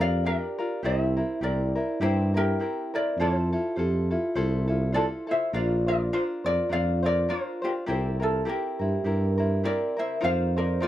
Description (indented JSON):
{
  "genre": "Hawaiian",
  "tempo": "102 BPM",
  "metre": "4/4",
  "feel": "swing 57% on 8ths",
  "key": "F major, Bb major from 5.5 s",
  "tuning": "A4 = 440 Hz",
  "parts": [
    { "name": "ukulele", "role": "melody", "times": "0.0-10.9 s", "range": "F4 to F5", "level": "-28 LUFS", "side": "left 1 dB", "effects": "none" },
    { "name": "vibraphone with soft mallets", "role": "second line", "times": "0.0-10.9 s", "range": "E4 to C5", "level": "-32 LUFS", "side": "right 3 dB", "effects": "tape echo" },
    { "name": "tenor ukulele", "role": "accompaniment", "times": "0.0-10.9 s", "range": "C4 to C5", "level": "-32 LUFS", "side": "left 2 dB", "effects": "none" },
    { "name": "breathy tuba", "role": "bass", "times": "0.0-10.8 s", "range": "Bb1 to G2", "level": "-26 LUFS", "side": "equal", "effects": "none" }
  ],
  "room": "studio ambience",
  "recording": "dry, close 1970s-style studio recording",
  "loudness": "-24 LUFS",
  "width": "side -13 dB against mid",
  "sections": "0.0-5.5 A section; 5.5-10.9 B section",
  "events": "none",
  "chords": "0.0 Bb6; 0.8 C7; 3.2 Fmaj7; 5.5 Bbadd9; 7.9 C7; 10.2 F7sus4"
}